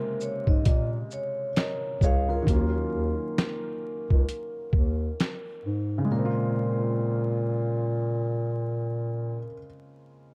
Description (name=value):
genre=lo-fi hip hop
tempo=66 BPM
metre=4/4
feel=swing 57% on 16ths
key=Bb minor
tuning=A4 = 439 Hz
part: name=vibraphone with soft mallets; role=melody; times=0.0-9.5 s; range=Bb4 to F5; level=-36 LUFS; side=equal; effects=none
part: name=felt-muted upright piano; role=accompaniment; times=0.0-10.3 s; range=C3 to Eb5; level=-35 LUFS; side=equal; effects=cassette tape
part: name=boom bap sampler-style drum kit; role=drums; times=0.2-5.4 s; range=finger snaps, hi-hat, kick drum, shaker, snare drum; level=-26 LUFS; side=equal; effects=vintage 12-bit sampler grit
part: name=breathy bass clarinet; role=bass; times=0.5-9.5 s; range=Db2 to Bb2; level=-30 LUFS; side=equal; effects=none
room=small room ambience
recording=vinyl crackle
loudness=-27 LUFS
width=mono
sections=0.0-6.1 A section; 6.1-9.7 B section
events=none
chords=0.0 Bbm7; 2.5 Ebm7; 6.1 Bbm7